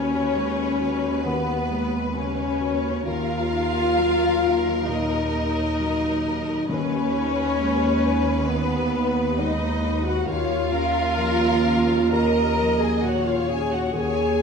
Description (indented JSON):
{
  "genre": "cinematic, emotional film score for orchestra",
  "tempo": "66 BPM",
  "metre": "4/4",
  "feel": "rubato",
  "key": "Eb minor",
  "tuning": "A4 = 441 Hz",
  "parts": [
    { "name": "warm studio violin section", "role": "melody", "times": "0.0-14.4 s", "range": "Bb4 to Eb5", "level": "-31 LUFS", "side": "left 4 dB", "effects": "none" },
    { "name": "rich studio violin section", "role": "second line", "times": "0.0-14.4 s", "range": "Cb5 to Bb5", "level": "-30 LUFS", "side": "left 2 dB", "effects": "none" },
    { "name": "felt-muted upright piano", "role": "accompaniment", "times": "0.0-14.4 s", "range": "Eb2 to Gb4", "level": "-32 LUFS", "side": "left 1 dB", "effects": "none" },
    { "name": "rich symphonic viola section", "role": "accompaniment", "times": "0.0-14.4 s", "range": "Cb4 to Bb4", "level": "-31 LUFS", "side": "right 2 dB", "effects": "none" },
    { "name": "mellow French horn section", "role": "sustained chords", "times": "0.0-14.4 s", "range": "Cb4 to Bb4", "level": "-24 LUFS", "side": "left 2 dB", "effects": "none" },
    { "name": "rich studio cello section", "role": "bass", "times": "0.0-14.4 s", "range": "Eb2", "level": "-28 LUFS", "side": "right 2 dB", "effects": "none" },
    { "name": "rich studio double bass section", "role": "bass", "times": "0.0-14.4 s", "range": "Eb2", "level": "-31 LUFS", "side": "right 2 dB", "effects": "none" },
    { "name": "timpani", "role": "percussion", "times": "0.0-0.8, 6.7-8.0 s", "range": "Eb3", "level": "-35 LUFS", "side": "left 4 dB", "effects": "none" }
  ],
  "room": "wet scoring stage reverb, RT60 1.9 s",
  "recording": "minimal, uncompressed stereo recording",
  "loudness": "-20 LUFS",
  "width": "side -5 dB against mid",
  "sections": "0.0-14.4 A section",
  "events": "none",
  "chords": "0.0 Db7sus4/Eb; 3.1 Ebm; 6.7 Abm/Eb; 10.3 Bbm/Eb",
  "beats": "0.34 1.25 2.16 | 3.06 3.97 4.88 5.78 | 6.69 7.59 8.49 9.38 | 10.26 11.16 12.12 13.03 | 13.94"
}